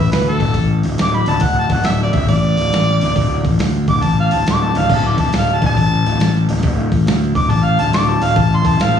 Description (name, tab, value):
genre	blues rock power trio and southern rock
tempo	138 BPM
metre	4/4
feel	swing 66% on 8ths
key	unclear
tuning	A4 = 439 Hz
part	warm harmonica	melody	0.0-9.0 s	A4 to D6	-18 LUFS	equal	overdrive, slapback echo, plate reverb
part	fuzz fingered electric bass	bass	0.0-9.0 s	D1 to D2	-15 LUFS	left 1 dB	overdrive
part	dusty soul sampler-style drum kit	drums	0.1-8.9 s	crash cymbal, hi-hat, kick drum, snare drum	-20 LUFS	equal	slapback echo
room	light reverb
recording	live gig heard through the venue's PA, club reverb, studio reverb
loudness	-13 LUFS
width	side -8 dB against mid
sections	0.0-9.0 A section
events	harmonica solo 0.0-9.0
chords	0.0 D5; 8.4 A5